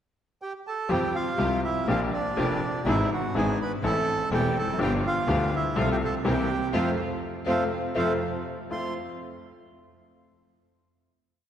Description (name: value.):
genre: tango.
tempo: 123 BPM.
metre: 4/4.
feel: rubato.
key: F major.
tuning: A4 = 438 Hz.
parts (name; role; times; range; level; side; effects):
bandoneon; melody; 0.4-8.9 s; D4 to C6; -29 LUFS; right 2 dB; none.
bright upright piano; accompaniment; 0.9-8.9 s; E1 to A4; -28 LUFS; left 2 dB; none.
bright symphonic string section; stabs; 0.9-8.9 s; G3 to G4; -37 LUFS; equal; none.
clear double bass; bass; 0.9-8.9 s; E1 to F2; -30 LUFS; right 1 dB; none.
vibraphone with soft mallets; second line; 6.7-8.9 s; A4 to F5; -33 LUFS; equal; none.
room: wet concert hall reverb, RT60 2.5 s.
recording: recorded in a church or concert hall.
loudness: -24 LUFS.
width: side -9 dB against mid.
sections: 0.0-0.9 pickup bar; 0.9-8.7 A section; 8.7-10.7 final chord.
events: band accent 6.7-8.7.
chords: 0.0 Gsus2; 0.9 Fsus2; 1.9 Bb6; 2.9 E7/G#; 3.8 Am; 4.8 G7; 5.8 F/C; 6.3 C7; 6.7 F; 8.2 N.C.; 8.7 F.